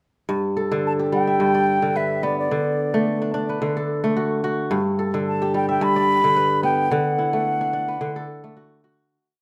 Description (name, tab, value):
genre	west african traditional, West African string and xylophone music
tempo	109 BPM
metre	4/4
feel	swing 54% on 16ths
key	G major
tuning	A4 = 442 Hz
part	kora	arpeggios	0.3-9.4 s	G2 to E5	-24 LUFS	equal	none
part	mellow silver concert flute	melody	0.9-8.6 s	D5 to B5	-24 LUFS	equal	none
room	moderate recital hall reverb, RT60 1.6 s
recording	none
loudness	-21 LUFS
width	mono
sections	0.3-9.1 A section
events	fade-out 6.9-9.1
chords	0.3 G; 2.5 D; 4.7 G; 6.9 D